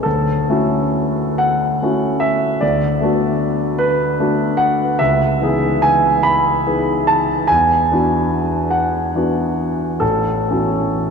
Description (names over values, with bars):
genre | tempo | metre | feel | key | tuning
classical, impressionist solo piano | 38-52 BPM (dotted quarters) | 6/8 | rubato | unclear | A4 = 440 Hz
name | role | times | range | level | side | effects
warm grand piano | solo | 0.0-11.1 s | A1 to B5 | -14 LUFS | equal | none
room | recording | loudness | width
wet cathedral reverb, RT60 6.9 s | in a vast, echoing space | -14 LUFS | side -5 dB against mid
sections
0.0-11.1 A section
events
none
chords
0.1 Dmaj9; 2.6 Bm7/D; 5.0 C#m9; 7.5 E9; 10.0 A69